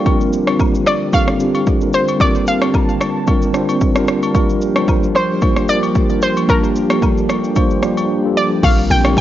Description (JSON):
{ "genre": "amapiano", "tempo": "112 BPM", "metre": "4/4", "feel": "swing 55% on 16ths", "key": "unclear", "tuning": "A4 = 441 Hz", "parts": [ { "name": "mellow tine electric piano", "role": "accompaniment", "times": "0.0-9.2 s", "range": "G3 to A5", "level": "-17 LUFS", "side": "right 1 dB", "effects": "medium stereo tremolo" }, { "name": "airy breathy pad", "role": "sustained chords", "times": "0.0-9.2 s", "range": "D3 to A5", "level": "-22 LUFS", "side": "equal", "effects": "chorus, sidechain pumping" }, { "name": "deep house drum kit", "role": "drums", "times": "0.1-9.2 s", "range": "crash cymbal, hi-hat, kick drum, rim click, shaker", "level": "-17 LUFS", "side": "equal", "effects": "overdrive" }, { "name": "agogo bells and woodblock", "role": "percussion", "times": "0.1-9.2 s", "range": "none", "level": "-26 LUFS", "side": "left 3 dB", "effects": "none" }, { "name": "analog pluck", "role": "melody", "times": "0.9-9.2 s", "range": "Bb4 to G5", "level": "-18 LUFS", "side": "left 1 dB", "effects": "chorus, ping-pong delay" }, { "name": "deep log drum bass", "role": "bass", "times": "8.6-9.2 s", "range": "Bb1", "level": "-16 LUFS", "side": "equal", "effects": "none" } ], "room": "light reverb, digital ambience", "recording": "worn, warbling old tape, cassette tape, warbly pitch drift, nothing above 7.5 kHz", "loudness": "-13 LUFS", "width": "side -12 dB against mid", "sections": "0.0-8.6 A section", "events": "silent gap 8.1-8.6", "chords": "0.1 Bb69; 4.3 Gm7; 8.6 Bb69", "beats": "| 0.06 0.60 1.13 1.67 | 2.20 2.74 3.27 3.81 | 4.35 4.88 5.42 5.95 | 6.49 7.03 7.56 8.10 | 8.63 9.17" }